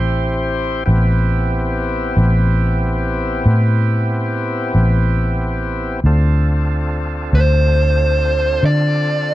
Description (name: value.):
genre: slow blues.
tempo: 46 BPM (dotted quarters).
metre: 12/8.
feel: straight.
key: A minor.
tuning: A4 = 441 Hz.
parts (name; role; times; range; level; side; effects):
overdriven tonewheel organ; sustained chords; 0.0-9.3 s; B3 to C5; -22 LUFS; equal; slow rotary speaker.
vintage muted fingered electric bass; bass; 0.0-9.3 s; A1 to D3; -15 LUFS; equal; none.
dark smooth lead guitar; melody; 7.3-9.3 s; C5 to D5; -17 LUFS; equal; overdrive.
room: little or no reverb.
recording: dark, warm production.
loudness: -14 LUFS.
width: side -15 dB against mid.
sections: 0.0-9.3 A section.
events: none.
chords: 0.0 Am7; 6.1 Dm7.